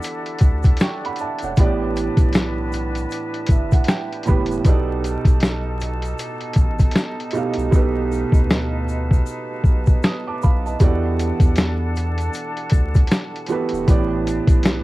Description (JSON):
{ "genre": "lo-fi hip hop", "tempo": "78 BPM", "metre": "4/4", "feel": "swing 60% on 16ths", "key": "unclear", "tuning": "A4 = 440 Hz", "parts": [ { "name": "felt-muted upright piano", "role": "accompaniment", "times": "0.0-14.8 s", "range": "A2 to D#6", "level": "-24 LUFS", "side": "right 4 dB", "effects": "cassette tape, low-pass filter, plate reverb" }, { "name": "breathy flute section", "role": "sustained chords", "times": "0.0-14.8 s", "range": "D4 to A5", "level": "-31 LUFS", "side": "left 2 dB", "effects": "low-pass filter, cassette tape" }, { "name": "lo-fi sampler-style drum kit", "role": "drums", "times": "0.0-14.8 s", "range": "finger snaps, hi-hat, kick drum, snare drum", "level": "-16 LUFS", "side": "equal", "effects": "cassette tape" }, { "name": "egg shaker", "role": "percussion", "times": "0.0-14.8 s", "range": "none", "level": "-45 LUFS", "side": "left 10 dB", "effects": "none" }, { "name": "round analog bass", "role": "bass", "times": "0.4-14.8 s", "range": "E1 to E2", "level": "-25 LUFS", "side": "equal", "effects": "tube saturation" } ], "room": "light reverb", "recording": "home recording on cassette, vinyl crackle", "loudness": "-17 LUFS", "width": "side -18 dB against mid", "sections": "0.0-14.8 A section", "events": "felt piano fill 3.1-4.6; hi-hats muted 7.7-10.8", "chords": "0.0 Em11; 1.6 A9sus4; 4.6 B7alt; 10.8 Em11; 13.9 A9sus4" }